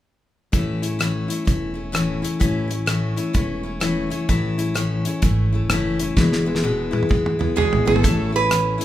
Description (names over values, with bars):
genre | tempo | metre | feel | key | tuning
honky-tonk and classic country | 128 BPM | 4/4 | swing 63% on 8ths | A major | A4 = 440 Hz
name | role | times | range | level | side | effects
picked steel-string acoustic guitar | accompaniment | 0.5-8.8 s | E2 to E4 | -22 LUFS | left 2 dB | none
upright bass | bass | 0.5-8.8 s | E1 to B1 | -26 LUFS | right 1 dB | none
damped 70s drum kit | drums | 0.5-8.8 s | hi-hat, kick drum, rim click, snare drum, toms | -22 LUFS | right 1 dB | none
lap resonator guitar | second line | 7.6-8.8 s | G#4 to B4 | -20 LUFS | right 5 dB | none
room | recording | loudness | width
moderate recital hall reverb, RT60 1.7 s | minimal, uncompressed stereo recording | -18 LUFS | side -13 dB against mid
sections
0.5-8.0 A section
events
drum fill 6.2-8.0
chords
0.5 A; 6.2 E; 8.0 A